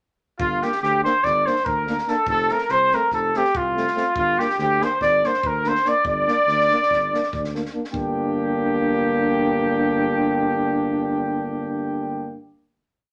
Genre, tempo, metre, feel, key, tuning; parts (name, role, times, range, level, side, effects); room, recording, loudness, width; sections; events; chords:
balkan folk, Balkan brass band; 288 BPM (eighths); 9/8; straight; G minor; A4 = 441 Hz
clear flugelhorn; melody; 0.4-12.4 s; F4 to G5; -24 LUFS; equal
warm trumpet; second line; 0.4-12.4 s; F4 to D5; -28 LUFS; equal
mellow tuba; bass; 0.4-12.4 s; F1 to D2; -32 LUFS; equal
compact cocktail drum kit; percussion; 0.4-8.1 s; kick drum, snare drum; -39 LUFS; equal
dark trombone; accompaniment; 0.6-12.4 s; A3 to Bb3; -29 LUFS; equal
warm French horn; accompaniment; 0.6-12.4 s; C4 to D4; -30 LUFS; equal
wet club reverb, RT60 0.6 s; -21 LUFS; mono
0.4-7.9 A section; 7.9-11.7 final chord
0.4 Gm; 2.3 F; 4.2 Gm